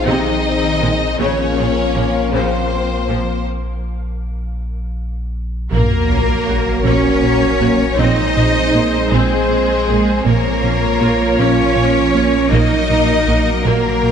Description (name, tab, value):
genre	cinematic, hybrid orchestral and electronic film score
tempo	53 BPM (dotted quarters)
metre	6/8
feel	straight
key	Bb minor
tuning	A4 = 441 Hz
part	rich symphonic violin section	melody	0.0-14.1 s	Ab4 to Eb5	-23 LUFS	left 4 dB	none
part	rich symphonic violin section	second line	0.0-14.1 s	C4 to Eb5	-23 LUFS	left 4 dB	none
part	glassy FM pad	sustained chords	0.0-14.1 s	Eb3 to F5	-22 LUFS	left 1 dB	ensemble chorus, built-in reverb
part	warm French horn section	sustained chords	0.0-14.1 s	Bb3 to Db5	-22 LUFS	left 2 dB	none
part	warm sub bass	bass	0.0-14.1 s	Bb1	-22 LUFS	equal	none
part	rich symphonic viola section	accompaniment	0.1-14.1 s	C3 to Db5	-24 LUFS	right 1 dB	none
part	clear symphonic cello section	bass	0.1-14.1 s	Bb2 to Eb4	-19 LUFS	right 3 dB	none
part	rich symphonic double bass section	bass	0.1-13.7 s	Bb1	-23 LUFS	right 3 dB	none
part	smooth synth bass	riff	5.7-14.1 s	Bb2 to Bb3	-20 LUFS	right 2 dB	none
part	sub drop	sound effects	5.7-8.0 s	none	-23 LUFS	equal	none
room	moderate scoring stage reverb, RT60 1.8 s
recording	nothing above 10.8 kHz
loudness	-13 LUFS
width	side -7 dB against mid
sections	0.0-5.7 A section; 5.7-14.1 A section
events	break 3.5-5.7; impact 5.7-8.0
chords	0.0 Ab/Bb; 1.2 Bbm; 3.5 N.C.; 5.7 Gb/Bb; 8.0 Ab/Bb; 10.3 Bbm; 12.5 Ebm/Bb